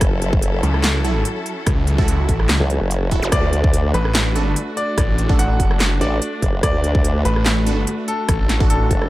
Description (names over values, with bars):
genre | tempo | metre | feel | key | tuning
heavy wobble dubstep | 145 BPM | 4/4 | swing 54% on 16ths, half-time | unclear | A4 = 440 Hz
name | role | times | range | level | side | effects
rich studio string section | sustained chords | 0.0-9.1 s | F#3 to A4 | -26 LUFS | left 1 dB | sidechain pumping
formant-sweep wobble bass | bass | 0.0-9.1 s | F#1 to D2 | -19 LUFS | equal | chorus, overdrive
big-room dance drum kit | drums | 0.0-9.1 s | handclaps, hi-hat, rim click, snare drum | -22 LUFS | right 1 dB | none
electronic kick drum | drums | 0.0-9.0 s | none | -19 LUFS | equal | none
snarling distorted saw bass | bass | 0.6-8.9 s | F#1 to C#2 | -18 LUFS | equal | distortion, overdrive
supersaw stab | stabs | 1.0-9.1 s | D4 to A4 | -28 LUFS | right 4 dB | digital delay
zap | sound effects | 3.2-3.3 s | none | -28 LUFS | equal | none
bright grand piano | melody | 3.3-9.1 s | A4 to F#5 | -25 LUFS | left 1 dB | digital delay
room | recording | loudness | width
little or no reverb | dark, warm production | -16 LUFS | side -16 dB against mid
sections
0.0-9.1 A section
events
none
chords
0.0 F#m7; 3.3 D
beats
| 0.01 0.42 0.84 1.25 | 1.67 2.08 2.49 2.91 | 3.32 3.73 4.15 4.56 | 4.98 5.39 5.80 6.22 | 6.63 7.04 7.46 7.87 | 8.29 8.70